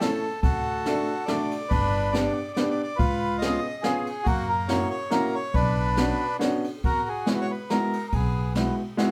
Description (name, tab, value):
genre	musette waltz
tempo	141 BPM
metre	3/4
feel	swing 54% on 8ths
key	B minor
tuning	A4 = 441 Hz
part	bandoneon	melody	0.0-8.8 s	A#3 to D#5	-30 LUFS	equal	none
part	clear upright piano	accompaniment	0.0-9.1 s	G#3 to B4	-29 LUFS	equal	none
part	jazz brush drum kit	drums	0.0-9.1 s	kick drum, ride cymbal, snare drum	-32 LUFS	equal	none
part	upright bass	bass	0.4-8.7 s	G1 to F#2	-31 LUFS	equal	none
room	moderate small room reverb, RT60 0.5 s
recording	band playing live in one room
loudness	-25 LUFS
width	mono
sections	0.0-6.8 A section; 6.8-9.1 B section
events	none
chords	0.4 D; 1.7 G; 3.0 C#7; 4.3 F#7; 5.5 Bmadd9; 6.8 Eadd9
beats	0.01 | 0.43 0.86 1.28 | 1.71 2.14 2.57 | 2.99 3.42 3.84 | 4.26 4.69 5.12 | 5.54 5.97 6.41 | 6.84 7.27 7.70 | 8.13 8.55 8.98